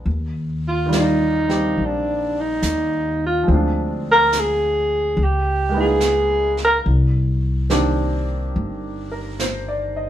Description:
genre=jazz ballad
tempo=71 BPM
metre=4/4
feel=swing 68% on 8ths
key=Eb major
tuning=A4 = 440 Hz
part: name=clear concert grand piano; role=accompaniment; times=0.0-10.1 s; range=Eb3 to Eb5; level=-24 LUFS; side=right 1 dB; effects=none
part: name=upright bass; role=bass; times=0.1-10.1 s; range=G1 to Eb2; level=-22 LUFS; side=left 1 dB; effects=none
part: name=jazz brush drum kit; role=drums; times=0.1-10.1 s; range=brushed snare drum, hi-hat, snare drum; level=-29 LUFS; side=right 3 dB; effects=none
part: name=breathy alto saxophone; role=melody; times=0.7-6.8 s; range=D4 to Bb4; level=-18 LUFS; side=equal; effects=none
room=moderate studio reverb, RT60 0.6 s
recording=band playing live in one room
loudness=-17 LUFS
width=side -11 dB against mid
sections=0.1-10.1 A section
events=alto saxophone solo 0.1-10.1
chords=0.1 Ebmaj9; 3.5 Dm7b5; 5.2 Db13; 6.9 Cm9

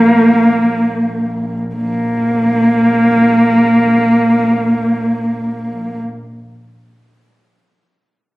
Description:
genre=mongolian traditional, Mongolian folk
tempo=free time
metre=none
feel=none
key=unclear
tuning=A4 = 440 Hz
part: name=dark horsehead fiddle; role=melody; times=0.0-6.0 s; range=Bb3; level=-11 LUFS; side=equal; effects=none
part: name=warm double bass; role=drone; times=0.0-6.1 s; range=Bb1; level=-26 LUFS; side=equal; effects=none
room=wet recital hall reverb, RT60 1.3 s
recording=recorded on a phone in the room, club reverb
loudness=-11 LUFS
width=side -19 dB against mid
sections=0.0-1.8 A section; 1.8-5.2 B section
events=slowing down 0.0-1.8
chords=none

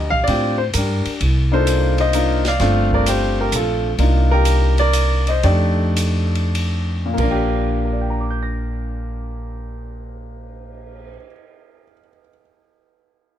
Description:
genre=jazz piano trio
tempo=90-130 BPM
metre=3/4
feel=swing 68% on 8ths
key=Bb major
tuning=A4 = 437 Hz
part: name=warm concert grand piano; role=melody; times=0.0-12.4 s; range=Bb2 to Bb6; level=-20 LUFS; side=left 1 dB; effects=none
part: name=upright bass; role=bass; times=0.0-11.2 s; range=G1 to A2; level=-19 LUFS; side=equal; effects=none
part: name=open jazz drum kit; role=drums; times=0.1-11.0 s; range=crash cymbal, cymbal swell, hi-hat, kick drum, ride cymbal, snare drum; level=-27 LUFS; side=right 1 dB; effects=none
room=little or no reverb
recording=close, detailed microphones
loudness=-16 LUFS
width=side -10 dB against mid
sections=0.0-1.2 A section; 1.2-7.2 B section; 7.2-11.2 C section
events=slowing down 4.0-7.2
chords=0.0 Bb6; 1.2 Cm11; 2.6 G7sus4; 4.0 Cm11; 5.4 F13; 7.2 Bb6

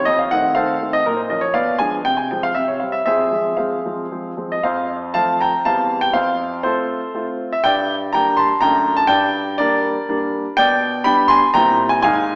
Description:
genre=classical-period piano sonatina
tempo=122 BPM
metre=3/4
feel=rubato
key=F minor, F major from 4.6 s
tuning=A4 = 440 Hz
part: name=warm baby grand piano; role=solo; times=0.0-12.4 s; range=E2 to C6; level=-15 LUFS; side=equal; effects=none
room=wet scoring stage reverb, RT60 1.6 s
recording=small speaker sound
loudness=-15 LUFS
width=side -35 dB against mid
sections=0.0-4.6 A section; 4.6-12.4 B section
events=none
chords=0.1 F7; 1.1 Bbm; 1.5 Bdim7; 2.0 Fm/C; 2.5 C5; 3.1 Fm; 4.6 F; 5.7 C/E; 6.2 F; 7.6 Gm; 8.6 D/F#; 9.1 Gm; 10.6 G/B; 11.6 C7/Bb

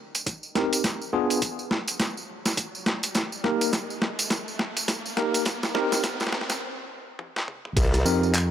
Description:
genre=glitch hop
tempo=104 BPM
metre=4/4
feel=swing 60% on 16ths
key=C minor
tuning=A4 = 440 Hz
part: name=riser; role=sound effects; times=0.8-6.6 s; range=none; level=-38 LUFS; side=right 1 dB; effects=none
part: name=boom bap sampler-style drum kit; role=drums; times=0.1-8.5 s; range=crash cymbal, handclaps, hi-hat, rim click, snare drum, toms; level=-28 LUFS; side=equal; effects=overdrive
part: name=tambourine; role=percussion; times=0.1-8.5 s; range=none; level=-31 LUFS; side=right 2 dB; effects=none
part: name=electronic kick drum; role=drums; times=0.3-7.9 s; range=none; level=-28 LUFS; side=equal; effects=overdrive, high-pass filter on kick, high-pass filter on room
part: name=bright tine electric piano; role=stabs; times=0.6-8.3 s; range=Bb3 to Bb4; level=-27 LUFS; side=equal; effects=medium stereo tremolo, sidechain pumping, low-pass filter, tape echo
part: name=formant-sweep wobble bass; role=bass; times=7.8-8.0 s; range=C2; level=-22 LUFS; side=equal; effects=chorus
part: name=fingered electric bass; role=bass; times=8.1-8.5 s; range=F2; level=-23 LUFS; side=equal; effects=none
room=light reverb, digital ambience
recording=dry, gritty hardware recording, high-pass filter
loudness=-24 LUFS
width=side -10 dB against mid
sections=0.0-7.8 A section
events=build-up 0.0-7.8; drum fill 0.0-6.6, 7.2-7.8; riser 0.8-6.6; break 6.6-7.8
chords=0.0 Cm7; 0.8 Bdim7; 3.2 Eb; 5.5 Cm7

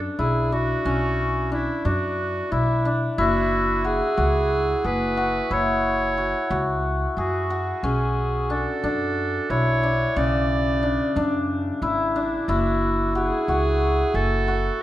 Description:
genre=contemporary instrumental, contemporary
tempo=180 BPM (eighths)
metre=7/8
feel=straight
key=B dorian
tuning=A4 = 440 Hz
part: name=hammered dulcimer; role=arpeggios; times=0.0-14.8 s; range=C#3 to G#5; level=-24 LUFS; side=left 2 dB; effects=none
part: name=upright bass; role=bass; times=0.0-14.7 s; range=F#1 to F#2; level=-26 LUFS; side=equal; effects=none
part: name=clear clarinet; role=melody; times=0.2-14.8 s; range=E4 to D5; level=-26 LUFS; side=right 3 dB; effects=none
room=moderate recital hall reverb, RT60 1.3 s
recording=minimal, uncompressed stereo recording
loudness=-20 LUFS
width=side -14 dB against mid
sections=0.0-14.8 A section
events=none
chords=0.0 Bmadd9; 3.2 F#7sus2; 7.8 Bm9; 12.5 F#sus2

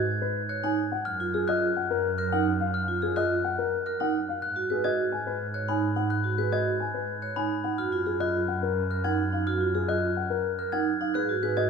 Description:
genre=classical, minimalist pattern music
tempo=107 BPM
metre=3/4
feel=straight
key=unclear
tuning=A4 = 442 Hz
part: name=rich studio double bass section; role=bass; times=0.0-11.7 s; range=F#2 to G#2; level=-32 LUFS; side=right 2 dB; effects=none
part: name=dark baby grand piano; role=melody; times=0.2-11.7 s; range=G#4 to G#5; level=-31 LUFS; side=left 8 dB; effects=none
part: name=glockenspiel with rubber mallets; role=arpeggios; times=0.5-11.7 s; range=B5 to G#6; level=-31 LUFS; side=left 4 dB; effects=none
part: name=vibraphone with medium hard mallets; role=arpeggios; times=0.5-11.7 s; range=D#4 to C#5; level=-29 LUFS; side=right 6 dB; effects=none
room=wet recital hall reverb, RT60 1.5 s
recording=none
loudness=-25 LUFS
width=side -5 dB against mid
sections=0.0-11.7 A section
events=none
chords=0.0 G#7(no3); 1.1 N.C.; 4.4 G#m7; 7.8 F#sus2; 11.2 G#m7

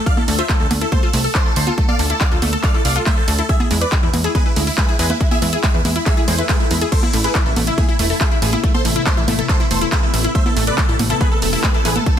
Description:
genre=uplifting trance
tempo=140 BPM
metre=4/4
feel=straight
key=A harmonic minor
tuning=A4 = 441 Hz
part: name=big supersaw lead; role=melody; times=0.0-12.2 s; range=E4 to F5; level=-22 LUFS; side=right 1 dB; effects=phaser, sidechain pumping, tape echo
part: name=analog pluck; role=arpeggios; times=0.0-12.2 s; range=G#3 to B4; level=-24 LUFS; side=left 3 dB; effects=chorus, sidechain pumping, ping-pong delay
part: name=electronic kick drum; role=drums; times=0.1-12.2 s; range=none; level=-17 LUFS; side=equal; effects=overdrive
part: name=house drum kit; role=drums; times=0.1-12.2 s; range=congas, crash cymbal, handclaps, hi-hat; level=-22 LUFS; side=right 1 dB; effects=overdrive
part: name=plucky analog bass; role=bass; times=0.3-12.0 s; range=E1 to E2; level=-20 LUFS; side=equal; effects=sidechain pumping
part: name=swell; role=sound effects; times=6.2-6.9 s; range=none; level=-30 LUFS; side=left 5 dB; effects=none
part: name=shimmering ambient pad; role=sustained chords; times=7.7-12.2 s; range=C3 to B3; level=-26 LUFS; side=left 2 dB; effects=chorus, built-in reverb, sidechain pumping
room=little or no reverb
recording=dense, heavily limited modern master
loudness=-14 LUFS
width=side -9 dB against mid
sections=0.0-12.2 A section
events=swell 6.2-6.9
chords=0.1 D5; 3.5 E; 6.9 Amadd9

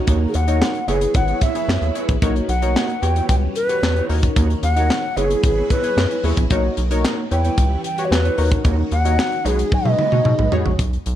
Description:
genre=early-eighties boogie funk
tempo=112 BPM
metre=4/4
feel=straight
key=B major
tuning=A4 = 440 Hz
part: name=funky polysynth comp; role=accompaniment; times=0.0-10.7 s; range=D#4 to C#5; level=-26 LUFS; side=left 3 dB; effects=chorus
part: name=string machine, full ensemble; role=sustained chords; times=0.0-10.8 s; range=D#3 to B4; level=-32 LUFS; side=equal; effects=phaser, ensemble chorus
part: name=mellow electric guitar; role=riff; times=0.1-10.7 s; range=G#3 to D#5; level=-28 LUFS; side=right 5 dB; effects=ensemble chorus
part: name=rubbery square bass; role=bass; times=0.1-11.2 s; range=F#1 to B2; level=-19 LUFS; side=equal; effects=none
part: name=tight funk drum kit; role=drums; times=0.1-11.2 s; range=handclaps, hi-hat, kick drum, snare drum, toms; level=-21 LUFS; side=equal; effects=none
part: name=bright reedy round clay ocarina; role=melody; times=0.3-10.5 s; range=G#4 to G5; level=-22 LUFS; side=equal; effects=slapback echo
room=light reverb, small room ambience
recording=dark, warm production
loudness=-16 LUFS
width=side -11 dB against mid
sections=0.0-10.8 A section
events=drum fill 9.7-10.8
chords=0.0 D#m7; 0.9 F#9sus4; 2.2 Bmaj9; 3.0 Em6; 4.1 D#m7; 5.2 F#9sus4; 6.5 Bmaj9; 7.3 Em6; 8.4 D#m7; 9.5 B6

